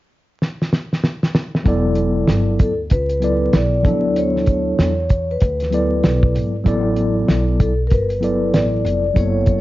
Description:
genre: hip hop, jazz-hop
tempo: 96 BPM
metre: 4/4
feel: swing 64% on 16ths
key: E dorian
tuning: A4 = 440 Hz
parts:
  - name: cloth-damped thuddy drum kit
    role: drums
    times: 0.4-9.6 s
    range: hi-hat, kick drum, snare drum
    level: -17 LUFS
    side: equal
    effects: none
  - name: mellow tine electric piano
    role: accompaniment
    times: 1.6-9.6 s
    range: F3 to D5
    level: -19 LUFS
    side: equal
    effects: medium stereo tremolo
  - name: upright bass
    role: bass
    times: 1.7-9.6 s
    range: E1 to E2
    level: -21 LUFS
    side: equal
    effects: none
  - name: vibraphone with soft mallets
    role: melody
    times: 2.6-9.6 s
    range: A4 to D5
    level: -21 LUFS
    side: equal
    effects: auto-pan
room: moderate studio reverb, RT60 0.7 s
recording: worn, warbling old tape, cassette tape, vinyl crackle, warbly pitch drift, nothing above 7.5 kHz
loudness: -15 LUFS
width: side -16 dB against mid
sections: 0.0-1.7 A section; 1.7-9.6 B section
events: drum fill 0.4-1.7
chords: 0.0 N.C.; 1.7 Em9; 3.9 D6; 6.7 A9sus4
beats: 0.41 1.04 | 1.66 2.29 2.91 3.54 | 4.16 4.79 5.41 6.04 | 6.66 7.29 7.91 8.54 | 9.16

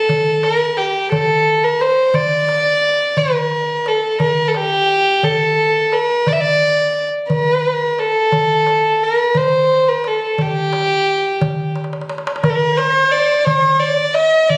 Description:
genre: Arabic maqam ensemble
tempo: 58 BPM (dotted quarters)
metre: 6/8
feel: straight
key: G maqam rast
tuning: A4 = 439 Hz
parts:
  - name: warm violin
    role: melody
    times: 0.0-14.6 s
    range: G4 to E5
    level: -16 LUFS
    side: equal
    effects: none
  - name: darbuka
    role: percussion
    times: 0.1-14.6 s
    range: none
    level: -25 LUFS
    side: equal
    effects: none
  - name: warm symphonic violin section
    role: second line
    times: 12.4-14.6 s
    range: Bb4+50c to E5-50c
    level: -25 LUFS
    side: equal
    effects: none
room: moderate recital hall reverb, RT60 1.5 s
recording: recorded on a phone in the room, studio reverb, compression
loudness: -16 LUFS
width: mono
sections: 0.0-12.4 A section; 12.4-14.6 B section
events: drum fill 11.8-12.4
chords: none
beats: | 0.09 1.12 | 2.15 3.18 | 4.21 5.24 | 6.27 7.30 | 8.33 9.36 | 10.38 11.41 | 12.44 13.47 | 14.50

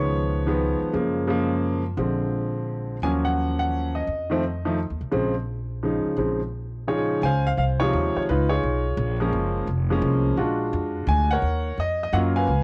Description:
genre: jazz piano trio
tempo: 172 BPM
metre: 3/4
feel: swing 65% on 8ths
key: Bb minor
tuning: A4 = 441 Hz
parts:
  - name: clear baby grand piano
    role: melody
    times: 0.0-12.6 s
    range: C3 to Ab5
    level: -26 LUFS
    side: equal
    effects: cassette tape
  - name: upright bass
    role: bass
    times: 0.0-12.6 s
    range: F1 to Gb2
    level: -28 LUFS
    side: equal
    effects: none
room: small room ambience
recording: home recording on cassette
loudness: -24 LUFS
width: mono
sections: 0.0-7.2 A section; 7.2-12.6 B section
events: none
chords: 0.0 Db7; 0.9 Gbmaj7; 2.0 Bb7; 3.0 Ebm9; 4.1 F7; 5.1 Bbm7; 7.2 Dbmaj7; 8.3 Db13; 9.3 Gbmaj9; 10.4 Bb7b13; 11.4 Ebm7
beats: 0.23 0.58 | 0.93 1.28 1.63 | 1.98 2.33 2.68 | 3.03 3.38 3.73 | 4.08 4.43 4.78 | 5.13 5.48 5.83 | 6.18 6.53 6.88 | 7.23 7.58 7.93 | 8.28 8.63 8.98 | 9.33 9.68 10.03 | 10.38 10.73 11.08 | 11.43 11.78 12.13 | 12.48

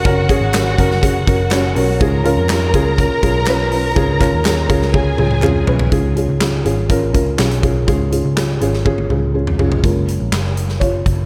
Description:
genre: piano-driven pop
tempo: 123 BPM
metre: 4/4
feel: straight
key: unclear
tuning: A4 = 440 Hz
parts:
  - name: warm studio violin section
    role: second line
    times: 0.0-5.9 s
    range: F#4 to A#5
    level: -24 LUFS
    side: equal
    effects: tape echo
  - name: felt-muted upright piano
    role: accompaniment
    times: 0.0-11.3 s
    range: G#2 to C#5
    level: -20 LUFS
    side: equal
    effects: none
  - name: vintage muted picked electric bass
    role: bass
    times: 0.1-11.3 s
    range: E#1 to E#2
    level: -21 LUFS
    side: equal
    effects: none
  - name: huge arena drum kit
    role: drums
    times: 0.1-11.2 s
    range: handclaps, hi-hat, kick drum, snare drum, toms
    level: -21 LUFS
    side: equal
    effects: none
  - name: group handclap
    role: percussion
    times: 0.5-5.5 s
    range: none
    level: -34 LUFS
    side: equal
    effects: none
room: little or no reverb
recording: none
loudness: -16 LUFS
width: mono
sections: 0.0-5.9 A section; 5.9-9.8 B section; 9.8-11.3 C section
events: drum fill 4.9-5.9, 8.9-9.8; felt piano solo 9.8-11.3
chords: 0.0 F#; 2.0 C#; 9.8 F#maj7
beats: | 0.05 0.54 1.03 1.52 | 2.01 2.50 2.99 3.48 | 3.96 4.45 4.94 5.43 | 5.92 6.41 6.90 7.39 | 7.88 8.37 8.86 9.35 | 9.84 10.33 10.81

